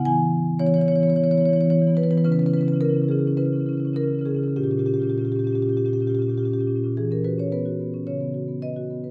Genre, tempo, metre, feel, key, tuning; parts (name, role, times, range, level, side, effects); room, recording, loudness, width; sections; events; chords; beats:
classical, contemporary piece for solo marimba; 96-112 BPM; 4/4; rubato; A4 = 441 Hz
marimba with soft mallets; solo; 0.0-9.1 s; A#2 to G#5; -22 LUFS; equal
moderate recital hall reverb, RT60 1.7 s; close, detailed microphones; -22 LUFS; mono
0.0-7.0 A section; 7.0-9.1 B section
0.1 E6; 2.3 C#m7; 4.6 A#m6; 7.0 Esus2; 8.1 C#9sus4
| 0.06 0.60 1.14 1.71 | 2.26 2.81 3.38 3.95 | 4.56 5.18 5.78 6.38 | 6.96 7.53 8.08 8.63